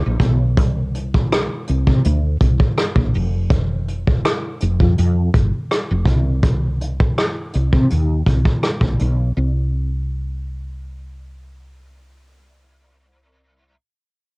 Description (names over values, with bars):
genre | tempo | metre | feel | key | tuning
R&B, neo-soul | 82 BPM | 4/4 | swing 53% on 16ths | C minor | A4 = 442 Hz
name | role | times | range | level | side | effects
woody fretless electric bass | bass | 0.1-13.7 s | F1 to C3 | -18 LUFS | equal | ensemble chorus
vintage brush drum kit | drums | 0.2-9.2 s | hi-hat, kick drum, rim click | -18 LUFS | equal | cassette tape
room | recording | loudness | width
little or no reverb | home recording on cassette | -16 LUFS | side -30 dB against mid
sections
0.0-9.4 A section; 9.4-12.3 B section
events
none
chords
none